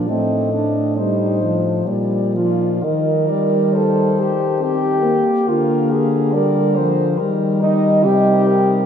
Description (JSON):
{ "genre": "classical, lyrical piece for horn quartet", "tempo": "60-71 BPM", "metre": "3/4", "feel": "rubato", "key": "unclear", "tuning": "A4 = 440 Hz", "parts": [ { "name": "clear French horn", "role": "melody", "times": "0.0-8.9 s", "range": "Bb4 to Eb5", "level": "-24 LUFS", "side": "left 5 dB", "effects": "none" }, { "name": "warm French horn", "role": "second line", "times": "0.0-8.9 s", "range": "C4 to Bb4", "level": "-19 LUFS", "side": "right 2 dB", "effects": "none" }, { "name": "mellow French horn", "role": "accompaniment", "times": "0.0-8.9 s", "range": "Eb3 to C4", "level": "-20 LUFS", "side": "left 2 dB", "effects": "none" }, { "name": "mellow French horn", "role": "bass", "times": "0.0-8.9 s", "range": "A2 to Eb3", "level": "-22 LUFS", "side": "equal", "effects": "none" } ], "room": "wet cathedral reverb, RT60 6.1 s", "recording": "in a vast, echoing space", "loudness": "-15 LUFS", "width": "side -8 dB against mid", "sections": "0.0-8.9 A section", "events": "none", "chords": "0.1 Am7b5; 1.9 Bb; 2.8 Eb; 5.5 Bb/D; 7.2 Eb; 8.0 Cm7", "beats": "| 0.08 0.96 1.86 | 2.83 3.74 4.61 | 5.47 6.33 7.19 | 8.05" }